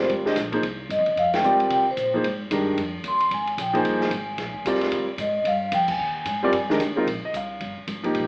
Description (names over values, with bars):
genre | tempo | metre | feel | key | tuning
modal jazz | 224 BPM | 4/4 | swing 61% on 8ths | unclear | A4 = 441 Hz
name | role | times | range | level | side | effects
vibraphone with soft mallets | melody | 0.0-6.8 s | C5 to C6 | -22 LUFS | equal | none
clear grand piano | accompaniment | 0.0-8.3 s | Eb3 to F5 | -23 LUFS | equal | none
upright bass | bass | 0.0-8.3 s | G1 to C3 | -34 LUFS | equal | none
open jazz drum kit | drums | 0.1-8.2 s | crash cymbal, hi-hat, kick drum, ride cymbal, snare drum | -31 LUFS | equal | none
room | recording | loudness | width
moderate large studio reverb, RT60 1.2 s | band playing live in one room, AM radio sound | -21 LUFS | side -26 dB against mid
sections
0.0-7.1 A section; 7.1-8.3 B section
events
band accent 1.3, 5.9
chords
0.0 Fm9; 2.8 Ab; 7.1 Bbsus2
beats
0.10 0.37 | 0.64 0.90 1.17 1.44 | 1.71 1.97 2.24 2.51 | 2.78 3.05 3.31 3.58 | 3.85 4.12 4.39 4.65 | 4.92 5.19 5.46 5.73 | 6.00 6.26 6.53 6.80 | 7.07 7.34 7.61 7.88 | 8.14